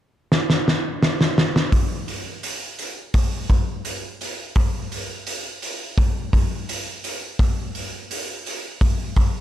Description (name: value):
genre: rock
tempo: 85 BPM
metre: 4/4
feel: straight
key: none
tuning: none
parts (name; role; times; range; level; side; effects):
- loose indie drum kit; drums; 0.3-9.3 s; hi-hat, kick drum, snare drum; -20 LUFS; equal; none
room: little or no reverb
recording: dark, warm production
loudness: -20 LUFS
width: side -12 dB against mid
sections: 0.0-1.7 A section; 1.7-9.4 B section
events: drum fill 0.3-1.7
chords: none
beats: 0.30 1.01 | 1.73 2.43 3.14 3.85 | 4.56 5.27 5.98 6.69 | 7.40 8.11 8.81